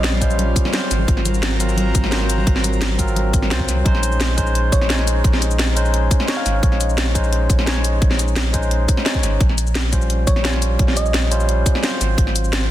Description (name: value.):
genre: liquid drum and bass.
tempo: 173 BPM.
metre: 4/4.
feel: straight.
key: Bb minor.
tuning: A4 = 440 Hz.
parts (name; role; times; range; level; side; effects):
bell-like FM electric piano; melody; 0.0-0.4, 4.7-6.6, 10.3-11.5 s; Db5 to F5; -28 LUFS; equal; chorus, tremolo, cassette tape, ping-pong delay.
barky tine electric piano; accompaniment; 0.0-12.7 s; Gb3 to Db5; -24 LUFS; equal; overdrive, ping-pong delay.
airy breathy pad; sustained chords; 0.0-3.8 s; Gb3 to C6; -28 LUFS; right 2 dB; chorus, sidechain pumping.
warm sub bass; bass; 0.0-12.7 s; Ab1 to C2; -19 LUFS; equal; none.
drum and bass drum kit; drums; 0.0-12.6 s; cabasa, hi-hat, snare drum; -22 LUFS; left 1 dB; none.
congas; percussion; 0.1-3.8 s; none; -28 LUFS; left 2 dB; none.
electronic kick drum; drums; 0.2-12.2 s; none; -17 LUFS; equal; none.
room: light reverb.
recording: dense, heavily limited modern master.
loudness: -15 LUFS.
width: side -13 dB against mid.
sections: 0.0-3.9 A section; 3.9-12.7 A section.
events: drop 0.0-3.9, 3.9-12.7.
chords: 0.0 Eb13/Bb; 0.9 Ab13; 3.9 Bbm11; 9.4 Eb13/Bb (rootless); 12.0 Ab13.